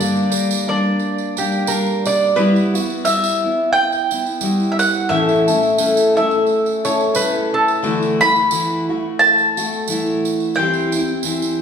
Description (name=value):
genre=acoustic folk duo or small band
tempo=88 BPM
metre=4/4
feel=swing 56% on 8ths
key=D major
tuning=A4 = 440 Hz
part: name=mandolin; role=melody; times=0.0-11.2 s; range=D5 to B5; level=-18 LUFS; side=equal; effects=none
part: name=picked steel-string acoustic guitar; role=accompaniment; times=0.0-11.6 s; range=A2 to Bb4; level=-18 LUFS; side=left 1 dB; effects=none
part: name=tambourine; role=percussion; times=0.0-11.6 s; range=none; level=-27 LUFS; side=right 7 dB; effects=none
part: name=lap resonator guitar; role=second line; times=1.4-8.0 s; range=G4 to D5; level=-19 LUFS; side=right 3 dB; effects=none
room=wet recital hall reverb, RT60 1.3 s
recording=recorded in a church or concert hall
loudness=-15 LUFS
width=side -7 dB against mid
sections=0.0-11.6 A section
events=none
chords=0.0 Gm; 2.4 Emadd9/G; 5.1 A; 7.8 Dadd9; 10.6 C/E